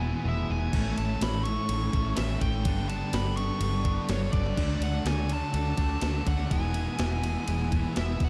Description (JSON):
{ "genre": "rock, shoegaze and dream pop", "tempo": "124 BPM", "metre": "4/4", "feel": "straight", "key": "A major", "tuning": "A4 = 440 Hz", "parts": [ { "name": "bluesy overdriven lead guitar", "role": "melody", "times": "0.0-8.3 s", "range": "C#5 to C#6", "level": "-38 LUFS", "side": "equal", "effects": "distortion, digital delay" }, { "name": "chorused pulse-width pad", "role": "sustained chords", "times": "0.0-8.3 s", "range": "G#4 to D6", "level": "-45 LUFS", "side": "equal", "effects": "phaser" }, { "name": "clean electric guitar", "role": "riff", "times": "0.0-8.3 s", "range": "E2 to A4", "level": "-38 LUFS", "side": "equal", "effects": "reverse reverb" }, { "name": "thick fuzz guitar", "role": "riff", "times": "0.0-8.3 s", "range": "E2 to D4", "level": "-36 LUFS", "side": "equal", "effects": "distortion, subtle chorus" }, { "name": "tight distorted guitar", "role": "riff", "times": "0.0-8.3 s", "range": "G2 to E4", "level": "-43 LUFS", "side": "equal", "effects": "distortion" }, { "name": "vintage muted fingered electric bass", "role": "bass", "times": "0.0-8.3 s", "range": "E1 to D2", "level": "-32 LUFS", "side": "equal", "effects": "none" }, { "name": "clean 12-bit digital drum machine", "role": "drums", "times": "0.7-8.3 s", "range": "crash cymbal, kick drum, ride cymbal, snare drum", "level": "-34 LUFS", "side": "equal", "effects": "none" } ], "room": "little or no reverb", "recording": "dark, warm production", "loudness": "-28 LUFS", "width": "mono", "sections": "0.0-8.3 A section", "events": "none", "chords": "0.0 Eadd9; 0.7 A; 2.7 Gadd9; 4.6 D; 6.5 Eadd9" }